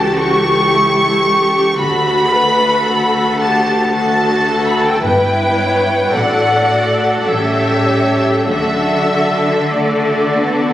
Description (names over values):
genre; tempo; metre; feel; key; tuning
classical, slow romantic movement for symphony orchestra; 45-57 BPM; 3/4; rubato; D major; A4 = 440 Hz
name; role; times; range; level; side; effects
warm symphonic violin section; melody; 0.0-10.7 s; D5 to C#6; -16 LUFS; left 1 dB; none
warm studio violin section; second line; 0.0-10.7 s; E4 to D5; -19 LUFS; left 1 dB; none
rich symphonic viola section; accompaniment; 0.0-10.7 s; E4 to B4; -19 LUFS; equal; none
mellow French horn section; sustained chords; 0.0-10.7 s; E3 to G4; -20 LUFS; left 1 dB; none
bright symphonic cello section; bass; 0.0-10.7 s; C#2 to D3; -20 LUFS; right 1 dB; none
rich studio double bass section; bass; 1.8-9.7 s; G1 to D2; -27 LUFS; equal; none
room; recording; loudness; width
moderate concert hall reverb, RT60 2.1 s; recorded on a phone in the room, club reverb, vinyl crackle, compression; -12 LUFS; side -12 dB against mid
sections
0.0-10.7 A section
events
none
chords
0.0 A7/C#; 1.8 D; 5.0 Em/G; 6.1 D/A; 7.3 A7; 8.5 D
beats
0.71 | 1.79 2.86 3.94 | 5.04 6.13 7.28 | 8.49 9.72